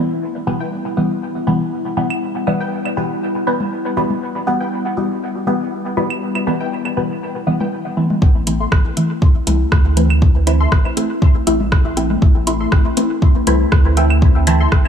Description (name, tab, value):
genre	dub techno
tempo	120 BPM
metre	4/4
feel	swing 54% on 16ths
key	A minor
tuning	A4 = 440 Hz
part	warbly tape-like pad	sustained chords	0.0-14.9 s	G3 to E4	-23 LUFS	left 2 dB	chorus, built-in reverb, sidechain pumping
part	filtered dub chord stab	stabs	0.0-14.6 s	B2 to E4	-19 LUFS	equal	phaser, sidechain pumping, dub echo
part	filtered dub chord stab	riff	0.6-14.7 s	E4 to C6	-30 LUFS	left 3 dB	analog chorus, sidechain pumping, dub echo
part	congas and claves	percussion	1.5-14.9 s	none	-26 LUFS	right 1 dB	sidechain pumping on perc, dub echo
part	soft dub sub bass	bass	8.2-14.8 s	A1 to D2	-17 LUFS	right 1 dB	sidechain pumping
part	electronic kick drum	drums	8.2-14.8 s	none	-13 LUFS	equal	none
part	deep house drum kit	drums	8.5-14.8 s	hi-hat, rim click	-23 LUFS	right 1 dB	dub echo
room	light reverb, digital ambience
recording	none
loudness	-14 LUFS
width	side -8 dB against mid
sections	0.0-8.2 A section; 8.2-14.9 B section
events	none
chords	0.0 N.C.; 8.2 Am